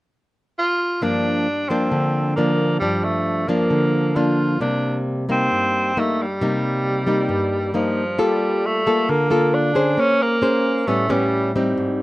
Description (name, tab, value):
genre	bossa nova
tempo	134 BPM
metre	4/4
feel	straight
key	G minor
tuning	A4 = 439 Hz
part	clear tenor saxophone	melody	0.6-11.6 s	F3 to F4	-21 LUFS	right 1 dB	none
part	nylon-string guitar	accompaniment	1.0-12.0 s	G2 to C5	-19 LUFS	left 1 dB	none
room	light reverb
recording	recorded outdoors, with no room sound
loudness	-17 LUFS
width	side -18 dB against mid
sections	0.0-1.0 A section; 1.0-8.2 B section; 8.2-12.0 C section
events	none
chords	0.0 N.C.; 1.0 Gm7; 4.6 Cm7; 8.2 Gm9; 10.0 Bbm9; 10.9 A9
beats	0.12 0.57 | 1.02 1.47 1.92 2.36 | 2.81 3.26 3.71 4.16 | 4.61 5.05 5.50 5.95 | 6.40 6.84 7.29 7.74 | 8.19 8.64 9.09 9.53 | 9.98 10.43 10.88 11.32 | 11.77